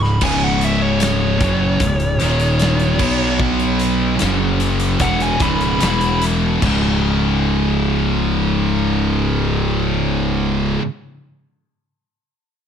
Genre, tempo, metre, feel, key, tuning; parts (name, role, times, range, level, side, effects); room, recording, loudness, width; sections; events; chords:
stoner and doom metal; 75 BPM; 4/4; straight; C# minor; A4 = 441 Hz
fuzz lead guitar; melody; 0.0-6.2 s; C#5 to B5; -23 LUFS; equal; distortion, analog delay
heavy high-gain guitar; riff; 0.0-10.8 s; C#2 to B3; -22 LUFS; equal; distortion
thick fuzz guitar; riff; 0.0-10.8 s; C#2 to B3; -22 LUFS; left 9 dB; distortion
thick fuzz guitar; riff; 0.0-10.8 s; C#2 to B3; -22 LUFS; right 8 dB; distortion
fuzz fingered electric bass; bass; 0.0-10.8 s; C#1 to B1; -20 LUFS; equal; overdrive
big rock drum kit; drums; 0.0-6.8 s; crash cymbal, hi-hat, kick drum, snare drum; -23 LUFS; equal
light reverb, small room ambience; -15 LUFS; side -8 dB against mid
0.0-6.6 A section; 6.6-9.9 B section
lead electric guitar solo 0.0-6.6
0.0 C#5; 2.2 D#5; 3.0 B5; 4.2 F#5; 5.0 C#m; 5.8 E5; 6.6 C#5